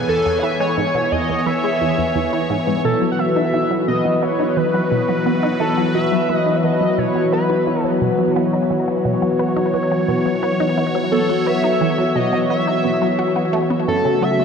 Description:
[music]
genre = ambient, sequencer-driven space music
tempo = 87 BPM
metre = 4/4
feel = straight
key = unclear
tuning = A4 = 440 Hz
[part]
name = sweeping resonant pad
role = sustained chords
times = 0.0-14.4 s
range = C#3 to G#5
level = -18 LUFS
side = left 1 dB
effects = chorus
[part]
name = resonant blip pluck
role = riff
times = 0.0-14.4 s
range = E2 to F#4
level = -23 LUFS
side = right 1 dB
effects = phaser, ping-pong delay
[part]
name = pulse-width lead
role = melody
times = 0.1-14.4 s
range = A4 to F#5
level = -22 LUFS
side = equal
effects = chorus, ping-pong delay
[sound]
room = wet huge ambient reverb, RT60 8.4 s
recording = cassette tape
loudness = -16 LUFS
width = side -6 dB against mid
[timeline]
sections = 0.0-14.4 A section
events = none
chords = 0.0 E; 2.8 Bsus4; 13.9 F#m

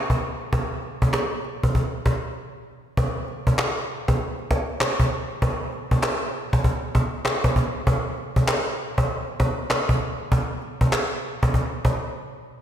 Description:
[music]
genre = R&B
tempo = 98 BPM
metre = 4/4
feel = swing 62% on 16ths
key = none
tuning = none
[part]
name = cajon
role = drums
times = 0.1-12.1 s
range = none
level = -22 LUFS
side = equal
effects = none
[part]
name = group handclap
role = percussion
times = 3.6-11.1 s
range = none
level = -32 LUFS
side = left 2 dB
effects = slapback echo
[sound]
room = wet concert hall reverb, RT60 2.0 s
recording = big arena sound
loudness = -22 LUFS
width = side -10 dB against mid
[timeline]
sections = 0.0-3.0 A section; 3.0-12.6 B section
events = break 2.4-3.0, 12.2-12.6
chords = none

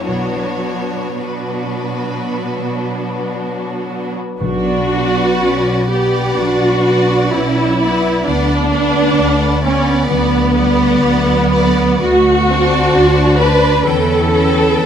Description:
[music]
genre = classical, slow romantic movement for symphony orchestra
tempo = 52-66 BPM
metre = 4/4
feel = rubato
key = B minor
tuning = A4 = 438 Hz
[part]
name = clear studio violin section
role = melody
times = 0.0-14.9 s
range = B4 to A5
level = -28 LUFS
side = left 3 dB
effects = none
[part]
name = rich studio violin section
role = second line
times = 0.0-14.9 s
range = D4 to D5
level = -23 LUFS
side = left 1 dB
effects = none
[part]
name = rich studio viola section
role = accompaniment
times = 0.0-14.9 s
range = F#3 to B4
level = -15 LUFS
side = right 1 dB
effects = none
[part]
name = concert harp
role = arpeggios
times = 0.0-14.9 s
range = F#2 to C6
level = -22 LUFS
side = left 7 dB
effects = none
[part]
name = warm studio cello section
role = bass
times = 0.0-14.9 s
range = B2 to D4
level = -22 LUFS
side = right 3 dB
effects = none
[part]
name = warm studio double bass section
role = bass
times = 0.0-14.9 s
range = B1 to E2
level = -20 LUFS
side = right 2 dB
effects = none
[part]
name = timpani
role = percussion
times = 4.4-5.9 s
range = B2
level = -26 LUFS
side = equal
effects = none
[sound]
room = moderate scoring stage reverb, RT60 2.0 s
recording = none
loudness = -12 LUFS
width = side -8 dB against mid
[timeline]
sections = 0.0-4.4 A section; 4.4-14.9 A section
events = none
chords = 0.1 Bm; 8.3 Bm/D; 12.0 D7; 13.9 Em

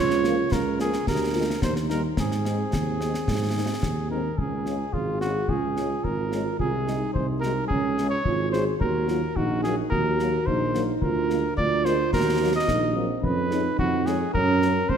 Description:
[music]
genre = military-style march for wind band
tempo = 108 BPM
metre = 2/4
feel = straight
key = Ab major, Db major from 4.4 s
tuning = A4 = 440 Hz
[part]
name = warm cornet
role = melody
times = 0.0-15.0 s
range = F4 to Eb5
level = -28 LUFS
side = equal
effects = none
[part]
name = mellow euphonium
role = second line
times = 0.0-15.0 s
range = C4 to Ab4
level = -28 LUFS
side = right 2 dB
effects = none
[part]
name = mellow tuba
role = bass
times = 0.0-15.0 s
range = Ab1 to Ab2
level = -27 LUFS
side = right 3 dB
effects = none
[part]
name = concert snare drum and concert bass drum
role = drums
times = 0.1-15.0 s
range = none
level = -30 LUFS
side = left 2 dB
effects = none
[part]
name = dark French horn section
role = accompaniment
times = 0.2-14.7 s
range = F3 to Gb4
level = -34 LUFS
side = left 6 dB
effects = none
[sound]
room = moderate concert hall reverb, RT60 2.0 s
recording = none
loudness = -22 LUFS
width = side -8 dB against mid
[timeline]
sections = 0.0-4.4 A section; 4.4-15.0 B section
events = none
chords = 0.0 Bbm/Db; 1.1 Bb7/D; 1.6 Eb; 2.2 Ab; 4.4 Db; 6.6 Ab7/C; 7.7 Db; 8.8 Ebm; 11.0 Bb7/D; 12.1 Ebm; 13.2 Db7/F; 14.3 Gb

